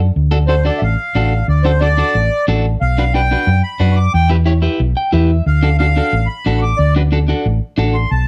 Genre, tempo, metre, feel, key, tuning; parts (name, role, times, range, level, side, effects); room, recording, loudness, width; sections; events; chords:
latin, cumbia; 181 BPM; 4/4; straight; D major; A4 = 440 Hz
hollow-body short-scale fingered electric bass; bass; 0.0-8.3 s; A1 to F#2; -16 LUFS; equal
electric guitar at the edge of break-up; accompaniment; 0.3-8.0 s; D4 to G5; -22 LUFS; equal
accordion; melody; 0.5-8.3 s; C5 to D6; -21 LUFS; equal
light reverb; dark, warm production; -15 LUFS; mono
0.2-8.3 A section
accordion solo 0.2-8.3; clean electric guitar fill 4.8-5.5
0.2 D; 2.8 Bm; 4.1 Em; 5.5 D